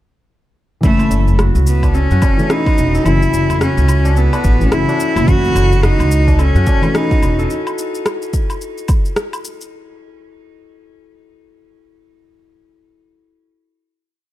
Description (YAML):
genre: organic downtempo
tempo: 108 BPM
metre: 4/4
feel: swing 59% on 16ths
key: F# dorian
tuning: A4 = 438 Hz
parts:
  - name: bright cello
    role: melody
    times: 0.8-7.5 s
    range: A3 to F#4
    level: -19 LUFS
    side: left 1 dB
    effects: ping-pong delay
  - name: felt-muted upright piano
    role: accompaniment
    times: 0.8-7.5 s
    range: E3 to C#4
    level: -22 LUFS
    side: left 2 dB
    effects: sidechain pumping
  - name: Celtic harp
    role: arpeggios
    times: 0.8-9.6 s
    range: E4 to A4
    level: -24 LUFS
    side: equal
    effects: ping-pong delay
  - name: upright bass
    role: bass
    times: 0.8-7.4 s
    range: E1 to F#2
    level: -14 LUFS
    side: equal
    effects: tube saturation
  - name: electronic kick drum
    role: drums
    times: 0.8-9.0 s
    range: none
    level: -15 LUFS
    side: equal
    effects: overdrive
  - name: electronic shaker, woodblock and rim click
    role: drums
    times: 0.8-9.7 s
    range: none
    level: -23 LUFS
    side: left 1 dB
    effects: overdrive
  - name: tabla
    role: percussion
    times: 0.8-7.4 s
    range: none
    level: -28 LUFS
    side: left 3 dB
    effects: none
room: studio reverb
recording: none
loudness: -12 LUFS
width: side -14 dB against mid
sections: 0.8-9.7 groove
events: none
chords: 0.8 F#m7